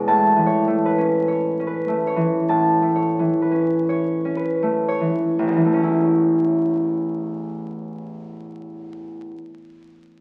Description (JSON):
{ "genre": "classical, solo harp piece", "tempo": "39-52 BPM", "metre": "4/4", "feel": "rubato", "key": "A major", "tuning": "A4 = 441 Hz", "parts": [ { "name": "concert harp", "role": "solo", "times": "0.0-9.5 s", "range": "A1 to A5", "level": "-21 LUFS", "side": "equal", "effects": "none" } ], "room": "wet stone room reverb, RT60 1.3 s", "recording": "very old 78 rpm record, vinyl crackle", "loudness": "-20 LUFS", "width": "mono", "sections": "0.0-5.4 A section; 5.4-10.2 B section", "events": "slowing down 0.0-5.4", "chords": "0.1 A" }